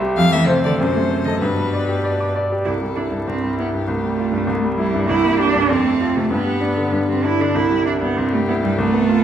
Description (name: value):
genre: quick classical-period movement for piano trio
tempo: 98 BPM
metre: 2/4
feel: straight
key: C major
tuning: A4 = 440 Hz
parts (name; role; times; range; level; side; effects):
- bright grand piano; accompaniment; 0.0-9.2 s; C2 to D6; -19 LUFS; left 1 dB; none
- rich violin; melody; 0.2-9.2 s; E4 to F5; -27 LUFS; left 6 dB; none
- rich cello; second line; 0.2-9.2 s; B2 to E4; -20 LUFS; right 4 dB; none
room: wet scoring stage reverb, RT60 1.9 s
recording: minimal, uncompressed stereo recording, vinyl crackle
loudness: -16 LUFS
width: side -9 dB against mid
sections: 0.0-2.7 A section; 2.7-9.2 B section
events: none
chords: 0.2 F; 0.8 F#dim; 1.4 G; 2.7 C; 3.9 Fadd9/C; 4.5 C; 5.1 C7; 5.7 F; 6.3 G; 7.6 C